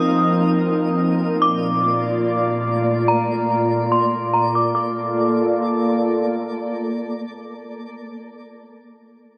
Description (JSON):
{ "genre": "hip hop", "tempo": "free time", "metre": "none", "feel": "none", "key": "Bb major", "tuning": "A4 = 439 Hz", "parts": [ { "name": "metallic FM bell", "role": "melody", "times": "0.0-6.0 s", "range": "Bb5 to Eb6", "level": "-24 LUFS", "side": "equal", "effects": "chorus, low-pass filter, tape echo" }, { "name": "airy breathy pad", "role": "sustained chords", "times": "0.0-7.9 s", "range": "Bb2 to D5", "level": "-22 LUFS", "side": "equal", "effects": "chorus, low-pass filter" }, { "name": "twinkling granular texture", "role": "texture", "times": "0.0-7.9 s", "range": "A3 to Eb5", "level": "-31 LUFS", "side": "equal", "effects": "built-in reverb" } ], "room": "moderate studio reverb, RT60 0.6 s", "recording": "dark, warm production", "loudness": "-20 LUFS", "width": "mono", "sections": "0.0-4.8 A section; 4.8-8.1 B section", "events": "none", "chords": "0.0 F7sus4; 1.4 Bbmaj7", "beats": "free time" }